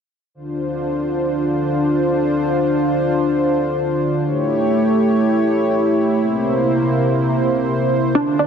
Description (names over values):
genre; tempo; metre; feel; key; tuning
house; free time; none; none; D minor; A4 = 441 Hz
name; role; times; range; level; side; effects
warm analog pad; sustained chords; 0.3-8.5 s; C3 to C#5; -16 LUFS; equal; chorus
wide unison pluck; arpeggios; 8.2-8.5 s; D4; -15 LUFS; right 2 dB; wide subtle chorus
room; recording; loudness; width
wet lush hall reverb, RT60 2.9 s; dense, heavily limited modern master; -16 LUFS; side -7 dB against mid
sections
0.3-8.5 A section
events
none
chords
0.3 Dm7; 4.2 A7; 6.2 C7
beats
free time